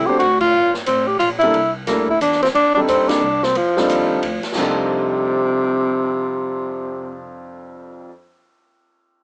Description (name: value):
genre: jazz, small-group swing and bop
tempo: 179 BPM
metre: 3/4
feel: swing 62% on 8ths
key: F mixolydian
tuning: A4 = 440 Hz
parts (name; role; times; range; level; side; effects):
- breathy tenor saxophone; melody; 0.0-7.4 s; C3 to G4; -16 LUFS; equal; cassette tape
- warm concert grand piano; accompaniment; 0.0-8.1 s; F2 to C5; -22 LUFS; equal; cassette tape
- upright bass; bass; 0.0-8.0 s; F1 to F2; -32 LUFS; equal; none
- open jazz drum kit; drums; 0.2-4.7 s; china cymbal, hi-hat, kick drum, ride cymbal, snare drum; -26 LUFS; equal; none
room: moderate booth ambience, RT60 0.2 s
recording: home recording on cassette, small speaker sound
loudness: -15 LUFS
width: side -34 dB against mid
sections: 0.0-4.6 A section; 4.6-6.6 B section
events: band accent 0.4, 3.1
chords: 0.2 D; 0.5 Gm; 1.5 C13; 2.6 F13